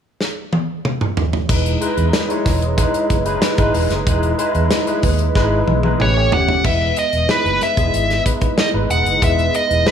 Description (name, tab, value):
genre	polished 1980s jazz-funk pop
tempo	93 BPM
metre	4/4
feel	straight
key	E major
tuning	A4 = 440 Hz
part	modern studio drum kit	drums	0.2-9.9 s	crash cymbal, hi-hat, kick drum, snare drum, toms	-20 LUFS	equal	none
part	barky tine electric piano	accompaniment	1.5-9.9 s	G#3 to C#5	-20 LUFS	left 1 dB	overdrive, ensemble chorus
part	vintage muted fingered electric bass	bass	1.5-9.8 s	E1 to E2	-19 LUFS	right 1 dB	none
part	nasal lead guitar with a parked wah	melody	6.0-9.9 s	B4 to F#5	-17 LUFS	equal	overdrive
room	light reverb, small room ambience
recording	none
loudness	-15 LUFS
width	side -8 dB against mid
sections	0.0-1.5 A section; 1.5-6.6 B section; 6.6-9.9 C section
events	drum fill 0.2-1.5, 5.4-6.6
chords	0.0 N.C.; 1.5 Emaj7; 6.0 A9; 6.6 Emaj7